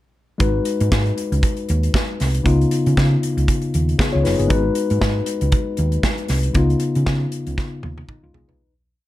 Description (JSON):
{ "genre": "disco", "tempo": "117 BPM", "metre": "4/4", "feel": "swing 56% on 16ths", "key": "G# dorian", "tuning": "A4 = 440 Hz", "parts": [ { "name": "mellow tine electric piano", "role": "accompaniment", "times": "0.4-8.7 s", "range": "C#3 to C#5", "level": "-21 LUFS", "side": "left 3 dB", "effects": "none" }, { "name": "hollow-body short-scale fingered electric bass", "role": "bass", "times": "0.4-8.6 s", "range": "F#1 to C#3", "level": "-19 LUFS", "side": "right 1 dB", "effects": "none" }, { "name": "modern studio drum kit", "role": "drums", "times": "0.4-8.6 s", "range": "hi-hat, kick drum, snare drum, toms", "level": "-21 LUFS", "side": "right 1 dB", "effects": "none" } ], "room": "light reverb, small room ambience", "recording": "dark, warm production", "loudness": "-17 LUFS", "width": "side -15 dB against mid", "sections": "0.4-8.6 groove", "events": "fade-out 6.6-8.6; drum fill 7.6-8.6", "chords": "0.4 G#m7; 2.5 C#9; 4.5 G#m7; 6.6 C#9" }